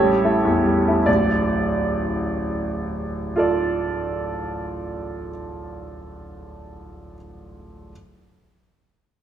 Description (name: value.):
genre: classical, romantic character piece for solo piano.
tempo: 52 BPM (dotted quarters).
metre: 6/8.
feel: rubato.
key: D minor.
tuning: A4 = 440 Hz.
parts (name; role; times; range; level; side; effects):
bright baby grand piano; solo; 0.0-7.9 s; D1 to D5; -21 LUFS; right 1 dB; none.
room: wet recital hall reverb, RT60 1.6 s.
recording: none.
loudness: -20 LUFS.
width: side -10 dB against mid.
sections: 0.0-1.1 A section; 1.1-5.7 B section.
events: slowing down 0.0-1.1.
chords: 0.0 A7; 1.1 Dm.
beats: | 1.07 2.22 | 3.35 4.50.